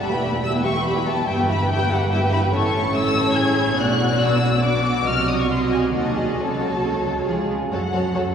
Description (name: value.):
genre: quick classical-period movement for string orchestra.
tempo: 142 BPM.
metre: 3/4.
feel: straight.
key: F# minor.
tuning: A4 = 436 Hz.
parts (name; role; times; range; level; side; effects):
warm studio violin section; melody; 0.0-8.3 s; F#5 to G#6; -25 LUFS; left 3 dB; none.
warm studio violin section; second line; 0.0-8.2 s; F#4 to G5; -24 LUFS; left 2 dB; none.
warm studio viola section; accompaniment; 0.0-8.2 s; Gb3 to G4; -24 LUFS; right 2 dB; none.
rich studio double bass section; bass; 0.0-8.3 s; E1 to F#2; -27 LUFS; right 1 dB; none.
warm studio cello section; bass; 0.0-8.3 s; E2 to F#3; -26 LUFS; right 2 dB; none.
room: wet cathedral reverb, RT60 5.3 s.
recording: recorded in a church or concert hall.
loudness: -18 LUFS.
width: side -7 dB against mid.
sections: 0.0-7.7 A section.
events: none.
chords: 0.0 Em; 1.3 Em/G; 2.5 A; 3.8 Bm; 5.1 Cdim7; 6.4 F#m/C#; 7.3 C#; 7.7 F#m.